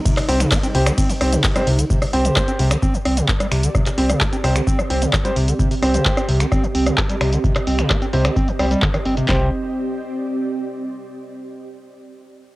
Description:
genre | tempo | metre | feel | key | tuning
acid house | 130 BPM | 4/4 | straight | C minor | A4 = 440 Hz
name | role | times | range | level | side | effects
warm analog pad | sustained chords | 0.0-1.9 s | C3 to Eb4 | -28 LUFS | equal | chorus, sidechain pumping, cassette tape
overdriven acid bass | riff | 0.1-9.5 s | C3 to C4 | -21 LUFS | equal | distortion, vintage 12-bit sampler grit, sidechain pumping, cassette tape, tape echo
electro analog drum machine | drums | 0.1-9.4 s | handclaps, kick drum, snare drum | -20 LUFS | equal | cassette tape
punchy analog drum machine | drums | 0.1-9.3 s | cabasa, finger snaps, handclaps, hi-hat, ride cymbal, rim click | -23 LUFS | equal | low-pass filter on cymbals, cassette tape, low-pass filter on perc, low-pass filter on snare, low-pass filter on hats, low-pass filter on room
bright grand piano | stabs | 0.3-9.5 s | C4 to C5 | -24 LUFS | equal | low-pass filter, cassette tape, tape echo
warm sub bass | bass | 0.3-9.5 s | G1 to C2 | -21 LUFS | equal | tube saturation, sidechain pumping
ethereal airy pad | texture | 2.8-11.1 s | C4 to Eb5 | -26 LUFS | right 2 dB | ensemble chorus, built-in reverb, sidechain pumping, cassette tape
room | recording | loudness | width
light reverb | home recording on cassette | -16 LUFS | side -19 dB against mid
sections
0.0-1.9 A section; 1.9-9.3 B section; 9.3-11.1 C section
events
drop 0.0-1.9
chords
0.0 C5

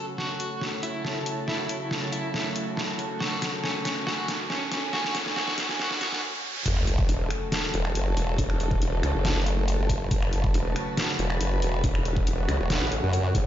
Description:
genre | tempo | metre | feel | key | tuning
heavy wobble dubstep | 139 BPM | 4/4 | half-time | F# minor | A4 = 440 Hz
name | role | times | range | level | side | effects
electric guitar at the edge of break-up | melody | 0.0-6.2 s | C#4 to F#4 | -33 LUFS | equal | tremolo, dub echo
warm studio string section | sustained chords | 0.0-13.5 s | C#3 to B4 | -34 LUFS | equal | sidechain pumping, low-pass filter
riser and sub drop | sound effects | 2.3-8.4 s | none | -34 LUFS | equal | none
granular cloud pad | texture | 0.0-13.5 s | F#4 to A5 | -37 LUFS | right 2 dB | built-in reverb, sidechain pumping
dubstep drum kit | drums | 0.2-13.4 s | crash cymbal, finger snaps, hi-hat, snare drum | -30 LUFS | equal | none
formant-sweep wobble bass | bass | 6.7-13.3 s | E1 to F#2 | -25 LUFS | equal | chorus, overdrive
electronic kick drum | drums | 6.7-13.4 s | none | -25 LUFS | equal | overdrive
formant-sweep wobble bass | bass | 7.1-13.5 s | E1 to C#2 | -26 LUFS | equal | chorus, overdrive
room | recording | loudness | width
light reverb | played on a big sound system in a bare room, large studio reverb, high-pass filter, nothing above 7.6 kHz | -24 LUFS | side -11 dB against mid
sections
0.0-6.7 A section; 6.7-13.5 B section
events
build-up 0.0-6.7; drum fill 0.0-6.2; filter sweep on string section 0.0-6.7; filter sweep 0.0-6.7; riser 2.3-6.7; stop 6.2-6.7; drop 6.7-13.5; impact 6.7-8.4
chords
0.0 F#m

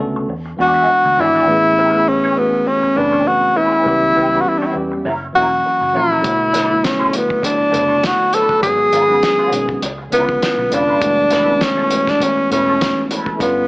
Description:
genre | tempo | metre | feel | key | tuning
lush 1970s-style soul | 101 BPM | 4/4 | swing 54% on 16ths | F# minor | A4 = 435 Hz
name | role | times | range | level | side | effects
tine electric piano | accompaniment | 0.0-13.7 s | D3 to B4 | -22 LUFS | equal | overdrive, fast stereo tremolo
electric guitar through a small old amp | riff | 0.0-13.4 s | C#4 to E5 | -24 LUFS | right 1 dB | wah, tremolo
vintage muted fingered electric bass | bass | 0.0-13.7 s | E1 to E2 | -31 LUFS | equal | none
breathy tenor saxophone | melody | 0.6-13.7 s | B3 to A4 | -14 LUFS | equal | none
cloth-damped thuddy drum kit | drums | 6.2-13.6 s | hi-hat, kick drum, snare drum | -23 LUFS | equal | none
room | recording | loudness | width
light reverb | small speaker sound | -13 LUFS | side -26 dB against mid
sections
0.0-13.7 A section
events
none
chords
0.3 E9; 1.5 Amaj9; 3.9 C#m7b5; 5.1 F#7; 6.2 Bm7; 8.6 G#m7; 9.8 C#7b9; 11.0 F#m11

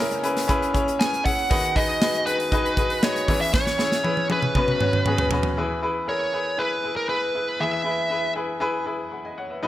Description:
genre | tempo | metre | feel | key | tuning
piano-driven pop | 118 BPM | 4/4 | straight | unclear | A4 = 442 Hz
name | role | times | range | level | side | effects
bright upright piano | accompaniment | 0.0-9.7 s | F#1 to B5 | -25 LUFS | left 2 dB | none
modern studio drum kit | drums | 0.1-5.6 s | hi-hat, kick drum, snare drum, toms | -24 LUFS | right 1 dB | none
smooth overdriven lead guitar | melody | 1.0-8.3 s | A#4 to G#5 | -25 LUFS | right 1 dB | none
room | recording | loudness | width
light reverb, small room ambience | bright 1980s-style digital production | -20 LUFS | side -14 dB against mid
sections
0.0-5.6 A section; 5.6-9.7 B section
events
drum fill 3.5-5.6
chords
0.0 C#m7; 1.5 B6/D#; 3.3 E6; 4.6 F#sus4; 5.6 E

